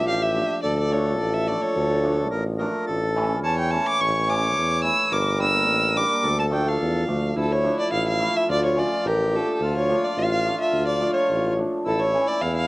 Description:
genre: klezmer.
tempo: 107 BPM.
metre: 2/4.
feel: straight.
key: D harmonic minor.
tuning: A4 = 440 Hz.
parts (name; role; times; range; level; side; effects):
dark violin; melody; 0.0-12.7 s; A4 to E6; -23 LUFS; equal; cassette tape.
accordion; second line; 0.0-12.7 s; E4 to C#5; -28 LUFS; left 1 dB; cassette tape.
cimbalom; accompaniment; 0.0-12.7 s; E3 to E4; -28 LUFS; right 1 dB; cassette tape.
warm tuba; bass; 0.0-12.7 s; G1 to E2; -26 LUFS; equal; none.
room: light reverb.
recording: home recording on cassette.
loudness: -20 LUFS.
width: side -21 dB against mid.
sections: 0.0-7.4 A section; 7.4-12.7 B section.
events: violin solo 0.0-7.4.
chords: 0.0 Dm; 2.9 A; 5.1 Gm; 6.2 Dm; 11.9 A.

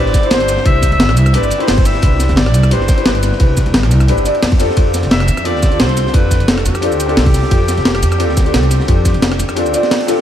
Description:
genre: liquid drum and bass.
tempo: 175 BPM.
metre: 4/4.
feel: swing 54% on 16ths.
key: unclear.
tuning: A4 = 441 Hz.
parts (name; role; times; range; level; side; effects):
clear alto saxophone; melody; 0.0-9.9 s; G4 to E5; -21 LUFS; equal; diffuse ambient delay.
felt-muted upright piano; accompaniment; 0.0-10.2 s; C4 to D5; -18 LUFS; left 2 dB; lush chorus, analog delay.
upright bass; bass; 0.0-9.7 s; F1 to F2; -15 LUFS; equal; none.
breakbeat sampler-style drum kit; drums; 0.1-10.2 s; hi-hat, rim click, shaker, snare drum; -18 LUFS; equal; none.
crunchy breakbeat drum kit; drums; 0.1-10.2 s; hi-hat, ride cymbal, snare drum; -24 LUFS; equal; high-pass filter on cymbals, high-pass filter on hats, high-pass filter on snare, high-pass filter on room.
electronic kick drum; drums; 0.1-9.1 s; none; -12 LUFS; equal; none.
room: light reverb, small room ambience.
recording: none.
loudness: -10 LUFS.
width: side -10 dB against mid.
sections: 0.0-10.2 A section.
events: none.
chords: 0.0 Cmaj7; 4.6 F69.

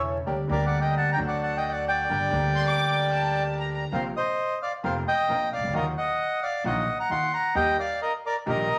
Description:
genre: tango.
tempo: 132 BPM.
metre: 4/4.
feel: rubato.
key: G harmonic minor, Bb major from 3.9 s.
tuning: A4 = 441 Hz.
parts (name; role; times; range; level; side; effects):
bandoneon; melody; 0.0-8.8 s; Bb4 to C6; -28 LUFS; equal; none.
warm grand piano; accompaniment; 0.0-8.7 s; E1 to G4; -32 LUFS; equal; none.
bandoneon; stabs; 0.0-8.7 s; C4 to Bb4; -36 LUFS; equal; none.
upright bass; bass; 0.0-8.7 s; E1 to Eb2; -38 LUFS; equal; none.
warm studio violin section; second line; 2.6-3.9 s; A5 to D6; -33 LUFS; equal; none.
room: wet studio reverb, RT60 0.9 s.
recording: vinyl crackle.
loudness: -26 LUFS.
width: mono.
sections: 0.0-3.9 A section; 3.9-8.8 B section.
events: none.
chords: 0.3 Gm/D; 1.2 D; 2.1 Gm; 3.9 Bbsus2; 5.7 Ebmadd9; 7.6 Eb.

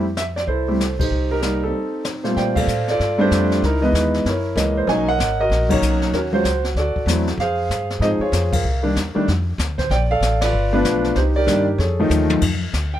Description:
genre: jazz piano trio.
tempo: 191 BPM.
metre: 4/4.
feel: swing 62% on 8ths.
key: unclear.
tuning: A4 = 440 Hz.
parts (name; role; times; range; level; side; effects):
warm concert grand piano; melody; 0.0-13.0 s; Bb2 to Ab5; -19 LUFS; right 1 dB; none.
upright bass; bass; 0.0-13.0 s; G1 to Bb2; -22 LUFS; equal; none.
jazz brush drum kit; drums; 0.2-13.0 s; brushed snare drum, crash cymbal, hi-hat, kick drum, ride cymbal, snare drum, toms; -26 LUFS; left 3 dB; none.
room: light reverb.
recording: none.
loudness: -17 LUFS.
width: side -12 dB against mid.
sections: 0.0-2.4 A section; 2.4-12.4 B section.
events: band accent 1.0, 2.5, 5.7, 8.5, 10.4; break 1.7-2.4; drum fill 12.1-12.4.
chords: 0.0 Fmaj7; 1.1 Cm7; 1.7 F7 (rootless); 2.4 Bbmaj13; 3.6 Dbm9; 4.3 Gb13; 4.9 Bmaj9; 6.1 Ebm7; 6.8 D9; 7.4 Dbmaj7; 8.6 Cm7; 9.3 Dm; 9.9 Bbmaj7; 10.5 G7; 11.2 Cm7; 11.8 F7alt; 12.4 N.C..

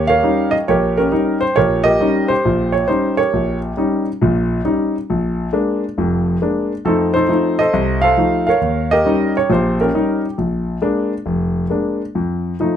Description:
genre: jazz.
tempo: 136 BPM.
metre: 4/4.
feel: swing 65% on 8ths.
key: unclear.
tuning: A4 = 440 Hz.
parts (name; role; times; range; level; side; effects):
warm concert grand piano; solo; 0.0-12.8 s; F1 to F5; -15 LUFS; equal; none.
room: light reverb.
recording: dark, warm production.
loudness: -15 LUFS.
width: side -9 dB against mid.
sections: 0.0-12.8 A section.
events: none.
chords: 0.0 Eb7; 5.1 Bb7; 6.8 F7; 8.6 Eb7; 10.4 Bb7; 12.1 F7.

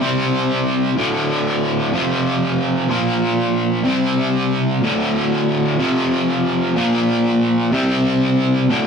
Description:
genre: rock.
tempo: 124 BPM.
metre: 4/4.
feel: straight.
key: unclear.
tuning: A4 = 440 Hz.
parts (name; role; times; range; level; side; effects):
cranked stack guitar; solo; 0.0-8.9 s; D2 to C4; -16 LUFS; equal; overdrive, harmonic tremolo.
room: wet studio reverb, RT60 0.6 s.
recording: rough rehearsal-room recording.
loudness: -16 LUFS.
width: side -6 dB against mid.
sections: 0.0-8.9 A section.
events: none.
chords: 0.0 C5; 1.0 D5; 1.9 F5; 2.9 Bb5; 3.9 C5; 4.8 D5; 5.8 F5; 6.8 Bb5; 7.7 C5.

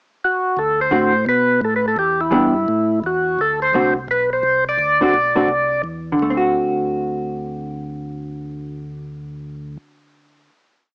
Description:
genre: soul jazz organ trio.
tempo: 170 BPM.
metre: 4/4.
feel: swing 62% on 8ths.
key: D mixolydian.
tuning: A4 = 439 Hz.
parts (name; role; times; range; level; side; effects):
percussive tonewheel organ; melody; 0.2-5.8 s; E4 to D5; -16 LUFS; equal; slow rotary speaker, cassette tape.
mellow tonewheel organ; bass; 0.6-9.8 s; B1 to B2; -27 LUFS; equal; slow rotary speaker.
hollow-body jazz guitar; accompaniment; 0.9-10.6 s; D3 to G4; -18 LUFS; equal; cassette tape.
room: moderate studio reverb, RT60 0.6 s.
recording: home recording on cassette, small speaker sound.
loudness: -15 LUFS.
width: side -33 dB against mid.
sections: 0.0-0.6 pickup bar; 0.6-6.2 A section; 6.2-9.0 final chord.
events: none.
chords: 0.0 N.C.; 0.6 D7; 1.3 Asus2; 2.0 Em7; 2.7 A5; 3.4 D7.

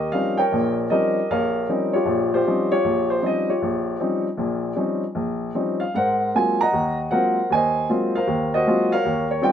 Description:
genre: solo jazz.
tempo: 155 BPM.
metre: 4/4.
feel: swing 64% on 8ths, rubato.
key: Eb mixolydian.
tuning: A4 = 440 Hz.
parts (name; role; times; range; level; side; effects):
warm upright piano; solo; 0.0-9.5 s; Bb1 to Bb5; -19 LUFS; equal; none.
room: light reverb.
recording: none.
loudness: -19 LUFS.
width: side -9 dB against mid.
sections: 0.0-9.5 A section.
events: none.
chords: 0.0 Eb13; 5.9 Ab13.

